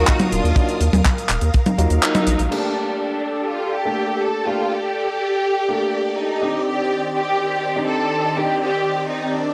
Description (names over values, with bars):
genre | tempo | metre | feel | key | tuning
italo disco | 123 BPM | 4/4 | straight | unclear | A4 = 440 Hz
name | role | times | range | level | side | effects
warm studio violin section | melody | 0.0-9.5 s | D4 to A4 | -25 LUFS | equal | analog delay
phased string machine | sustained chords | 0.0-9.5 s | Eb3 to Eb6 | -27 LUFS | equal | ensemble chorus, phaser
clear grand piano | stabs | 0.0-8.6 s | Gb3 to G4 | -28 LUFS | equal | vintage 12-bit sampler grit, low-pass filter
round analog bass | bass | 0.0-2.5 s | Eb1 to Eb2 | -21 LUFS | equal | transformer saturation
kick drum | drums | 0.1-1.6 s | none | -20 LUFS | equal | none
tight funk drum kit | drums | 0.1-2.6 s | crash cymbal, handclaps, hi-hat, toms | -23 LUFS | equal | none
room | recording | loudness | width
moderate plate reverb, RT60 2.0 s, small room ambience | dry, gritty hardware recording, transformer saturation | -20 LUFS | mono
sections
0.0-2.5 A section; 2.5-9.5 B section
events
kick drops out 2.0-2.5; band accent 2.0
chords
0.0 Ebmadd9; 2.5 Gmadd9; 6.4 Cmadd9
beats
0.08 | 0.56 1.05 1.54 2.03 | 2.52 3.00 3.49 3.98 | 4.47 4.95 5.44 5.93 | 6.42 6.91 7.39 7.88 | 8.37 8.86 9.34